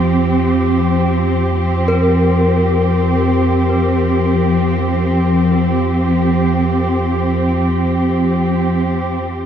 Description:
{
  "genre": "dark ambient drone",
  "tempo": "free time",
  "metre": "none",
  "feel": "none",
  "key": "unclear",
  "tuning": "A4 = 438 Hz",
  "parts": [
    { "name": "dark symphonic cello section", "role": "sustained chords", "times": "0.0-9.5 s", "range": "F3 to G4", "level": "-15 LUFS", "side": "equal", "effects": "none" },
    { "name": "gamelan-type bronze metallophone", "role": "arpeggios", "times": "0.0-9.2 s", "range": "F3 to Bb4", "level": "-23 LUFS", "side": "left 2 dB", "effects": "tape echo" },
    { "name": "deep rumbling drone", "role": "drone", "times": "0.0-9.5 s", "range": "F2 to F3", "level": "-18 LUFS", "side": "equal", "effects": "built-in reverb" }
  ],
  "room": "wet huge ambient reverb, RT60 7.8 s",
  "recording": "dreamy mix soaked in reverb",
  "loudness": "-13 LUFS",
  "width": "side -9 dB against mid",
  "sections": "0.0-9.5 A section",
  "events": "none",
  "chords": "0.0 Fsus2"
}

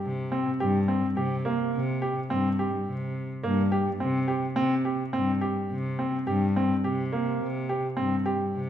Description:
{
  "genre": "contemporary instrumental, chamber music in an uneven meter",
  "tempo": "106 BPM",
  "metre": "5/4",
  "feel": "straight",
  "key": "unclear",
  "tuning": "A4 = 440 Hz",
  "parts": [
    { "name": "bright baby grand piano", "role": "arpeggios", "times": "0.0-8.6 s", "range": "Bb3 to G4", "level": "-27 LUFS", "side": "right 1 dB", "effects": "none" },
    { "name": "muted cello", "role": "bass", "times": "0.0-8.7 s", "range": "G2 to C3", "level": "-28 LUFS", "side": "left 1 dB", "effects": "none" }
  ],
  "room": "wet recital hall reverb, RT60 1.5 s",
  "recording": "minimal, uncompressed stereo recording",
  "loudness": "-25 LUFS",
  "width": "side -10 dB against mid",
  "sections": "0.0-8.7 A section",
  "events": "none",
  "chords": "0.0 C5"
}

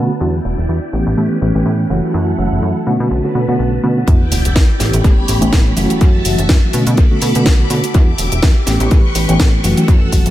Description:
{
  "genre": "filtered disco house",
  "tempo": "124 BPM",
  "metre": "4/4",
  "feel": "swing 56% on 16ths",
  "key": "E dorian",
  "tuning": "A4 = 438 Hz",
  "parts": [
    { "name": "mellow reed electric piano", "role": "accompaniment", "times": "0.0-10.3 s", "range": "D3 to G4", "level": "-17 LUFS", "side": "equal", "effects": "fast tremolo, phaser, sidechain pumping, low-pass filter, analog delay" },
    { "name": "phased string machine", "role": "sustained chords", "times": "0.0-10.3 s", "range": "D3 to E6", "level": "-23 LUFS", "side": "equal", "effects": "ensemble chorus, phaser, sidechain pumping, low-pass filter" },
    { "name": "plucky analog bass", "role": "bass", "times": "0.0-10.3 s", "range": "E1 to B2", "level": "-18 LUFS", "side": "equal", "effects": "tube saturation, sidechain pumping, low-pass filter" },
    { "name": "electronic kick drum", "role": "drums", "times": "4.1-10.2 s", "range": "none", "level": "-11 LUFS", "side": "equal", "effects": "studio reverb" },
    { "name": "house drum kit", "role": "drums", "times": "4.1-10.3 s", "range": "hi-hat, shaker, snare drum", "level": "-20 LUFS", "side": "equal", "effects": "sidechain pumping on hats, studio reverb, sidechain pumping on perc, analog delay" },
    { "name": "sub drop", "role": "sound effects", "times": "4.1-6.0 s", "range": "none", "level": "-21 LUFS", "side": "equal", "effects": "none" }
  ],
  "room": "little or no reverb",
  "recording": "echo-heavy mix",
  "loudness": "-11 LUFS",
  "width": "side -14 dB against mid",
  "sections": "0.0-4.1 A section; 4.1-10.3 B section",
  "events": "filter sweep 0.0-4.1; drop 4.1-10.3; impact 4.1-6.0",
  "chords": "0.2 Em7; 0.9 A9; 1.9 F#m7; 2.9 Bm7; 4.1 Em7; 4.8 A9; 5.8 F#m7; 6.7 Bm7; 7.9 Em7; 8.7 A9; 9.6 F#m7"
}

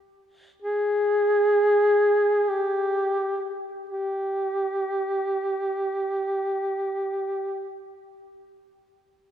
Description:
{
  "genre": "caucasian folk, Caucasian lament",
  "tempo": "free time",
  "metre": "none",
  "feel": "none",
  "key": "unclear",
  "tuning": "A4 = 439 Hz",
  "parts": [
    { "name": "dark duduk", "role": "solo", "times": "0.6-7.7 s", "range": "G4 to Ab4", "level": "-22 LUFS", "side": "equal", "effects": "none" }
  ],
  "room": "moderate church reverb, RT60 3.5 s",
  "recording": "minimal, uncompressed stereo recording",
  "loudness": "-22 LUFS",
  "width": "side -10 dB against mid",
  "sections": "0.0-3.9 A section; 3.9-8.1 B section",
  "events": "slowing down 0.0-3.9",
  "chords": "none"
}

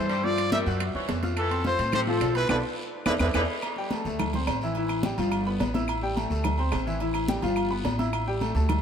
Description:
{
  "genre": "latin, salsa",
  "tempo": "213 BPM",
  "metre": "4/4",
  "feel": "straight",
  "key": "A minor",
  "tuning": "A4 = 440 Hz",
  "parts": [
    { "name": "warm trumpet", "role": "melody", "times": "0.0-3.4 s", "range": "A4 to E5", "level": "-29 LUFS", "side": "equal", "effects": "none" },
    { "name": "bright upright piano", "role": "accompaniment", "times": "0.0-8.8 s", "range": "E3 to F#6", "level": "-30 LUFS", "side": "left 2 dB", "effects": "none" },
    { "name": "upright bass", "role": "bass", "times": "0.0-8.8 s", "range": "G1 to A2", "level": "-29 LUFS", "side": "equal", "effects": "none" },
    { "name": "bright saxophone section", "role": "second line", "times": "0.1-3.4 s", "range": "B2 to G#3", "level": "-34 LUFS", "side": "equal", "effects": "none" },
    { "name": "congas", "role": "percussion", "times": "0.1-8.8 s", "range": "none", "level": "-32 LUFS", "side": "left 1 dB", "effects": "none" },
    { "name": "guiro", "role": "percussion", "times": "0.1-8.8 s", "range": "none", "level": "-44 LUFS", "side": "left 1 dB", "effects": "none" },
    { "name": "timbales and agogo bells", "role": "percussion", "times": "0.1-8.8 s", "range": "none", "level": "-34 LUFS", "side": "right 4 dB", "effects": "none" },
    { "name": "claves", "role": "percussion", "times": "0.4-8.8 s", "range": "none", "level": "-40 LUFS", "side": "left 2 dB", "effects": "none" }
  ],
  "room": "moderate plate reverb, RT60 3.0 s",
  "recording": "heard from further back in the room",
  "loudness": "-24 LUFS",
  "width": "side -8 dB against mid",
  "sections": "0.0-3.6 A section; 3.6-8.8 B section",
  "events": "band accent 2.5-3.6; drum fill 3.1-3.6",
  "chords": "0.2 Gm7; 0.8 F#5; 1.4 Fmaj7; 2.5 Bm7; 3.1 E7; 3.6 Dsus4; 4.2 D5; 4.8 A5; 5.3 G7; 5.9 A5; 6.4 D5; 7.0 A5; 7.6 G7; 8.1 A5"
}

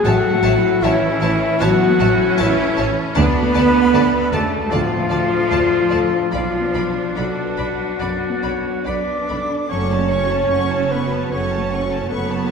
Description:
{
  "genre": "cinematic",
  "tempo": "67-79 BPM",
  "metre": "4/4",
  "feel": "rubato",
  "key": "unclear",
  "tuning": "A4 = 439 Hz",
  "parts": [
    { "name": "silver concert flute", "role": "second line", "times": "0.0-12.5 s", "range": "E5 to D6", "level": "-28 LUFS", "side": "left 1 dB", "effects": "none" },
    { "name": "warm oboe", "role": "second line", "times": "0.0-12.5 s", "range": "E4 to D5", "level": "-28 LUFS", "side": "right 2 dB", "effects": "none" },
    { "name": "clear symphonic viola section", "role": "accompaniment", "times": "0.0-12.5 s", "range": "C#3 to D4", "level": "-28 LUFS", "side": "right 2 dB", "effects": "none" },
    { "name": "dark concert grand piano", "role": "accompaniment", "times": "0.0-12.5 s", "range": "B1 to D5", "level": "-26 LUFS", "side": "left 1 dB", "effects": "none" },
    { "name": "mellow French horn section", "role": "sustained chords", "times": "0.0-12.5 s", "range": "E4 to D5", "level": "-20 LUFS", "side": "left 4 dB", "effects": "none" },
    { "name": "rich symphonic cello section", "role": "bass", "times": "0.0-12.5 s", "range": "E3 to D4", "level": "-22 LUFS", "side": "right 4 dB", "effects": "none" },
    { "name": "rich symphonic double bass section", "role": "bass", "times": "0.0-12.5 s", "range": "F#1 to D2", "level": "-23 LUFS", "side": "right 3 dB", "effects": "none" },
    { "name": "rich symphonic violin section", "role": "melody", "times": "0.1-12.5 s", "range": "A5 to C#6", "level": "-30 LUFS", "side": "left 3 dB", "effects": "none" },
    { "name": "clear symphonic violin section", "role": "second line", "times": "0.1-12.5 s", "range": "A4 to A5", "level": "-31 LUFS", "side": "left 3 dB", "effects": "none" },
    { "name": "clear clarinet", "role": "second line", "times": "7.2-9.7 s", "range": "A4 to D5", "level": "-32 LUFS", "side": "left 2 dB", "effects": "none" }
  ],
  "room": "wet scoring stage reverb, RT60 1.6 s",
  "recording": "heard from further back in the room",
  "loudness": "-15 LUFS",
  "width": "side -5 dB against mid",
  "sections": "0.0-12.5 A section",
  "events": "none",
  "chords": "0.0 A6; 3.2 Dm; 6.3 Bm; 9.7 F#m"
}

